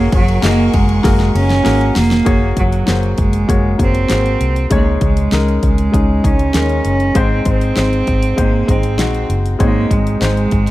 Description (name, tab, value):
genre	piano-driven pop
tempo	98 BPM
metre	4/4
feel	straight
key	Gb lydian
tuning	A4 = 439 Hz
part	rich cello	melody	0.0-10.7 s	F#3 to C#4	-18 LUFS	right 3 dB	none
part	warm grand piano	accompaniment	0.0-10.7 s	Ab2 to D#5	-19 LUFS	left 3 dB	none
part	warm studio string section	sustained chords	0.0-2.2 s	A#4 to C#6	-29 LUFS	left 4 dB	none
part	vintage muted fingered electric bass	bass	0.0-10.7 s	E#1 to Eb2	-17 LUFS	equal	none
part	pop drum kit	drums	0.1-10.7 s	handclaps, hi-hat, kick drum, ride cymbal, snare drum	-17 LUFS	equal	none
room	small room ambience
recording	dark, warm production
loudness	-12 LUFS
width	side -16 dB against mid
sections	0.0-2.3 A section; 2.3-10.7 B section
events	drum fill 1.0-2.3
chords	0.0 F#add9; 2.3 Gbadd9; 4.7 Dbsus2; 7.2 Ab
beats	0.43 1.04 1.65 | 2.26 2.88 3.49 4.10 | 4.71 5.32 5.93 6.54 | 7.16 7.77 8.38 8.99 | 9.60 10.21